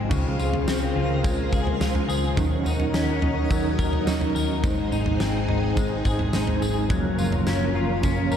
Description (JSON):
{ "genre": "dream pop", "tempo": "106 BPM", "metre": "4/4", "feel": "straight", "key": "unclear", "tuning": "A4 = 441 Hz", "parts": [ { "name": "string machine, violas", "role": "sustained chords", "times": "0.0-8.4 s", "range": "Db3 to Bb5", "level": "-30 LUFS", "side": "equal", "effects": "ensemble chorus" }, { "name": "clean electric guitar", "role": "arpeggios", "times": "0.0-8.4 s", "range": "Ab2 to Bb4", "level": "-27 LUFS", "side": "left 5 dB", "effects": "ensemble chorus, digital delay" }, { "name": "vintage muted picked electric bass", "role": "bass", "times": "0.0-8.4 s", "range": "Gb1 to Eb2", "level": "-27 LUFS", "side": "equal", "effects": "none" }, { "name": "mellow electric guitar", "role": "accompaniment", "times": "0.1-8.4 s", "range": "Gb2 to Bb4", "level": "-29 LUFS", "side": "right 4 dB", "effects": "tremolo, wide subtle chorus" }, { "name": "huge arena drum kit", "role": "drums", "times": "0.1-8.4 s", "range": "crash cymbal, kick drum, snare drum, tambourine, toms", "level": "-26 LUFS", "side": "right 1 dB", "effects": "none" } ], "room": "moderate lush hall reverb, RT60 2.1 s", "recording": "dark, warm production", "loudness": "-21 LUFS", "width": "side -8 dB against mid", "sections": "0.1-8.4 A section", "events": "none", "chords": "0.1 Dbmaj7; 2.4 Ebm7; 4.6 Ab; 6.9 Gbmaj7" }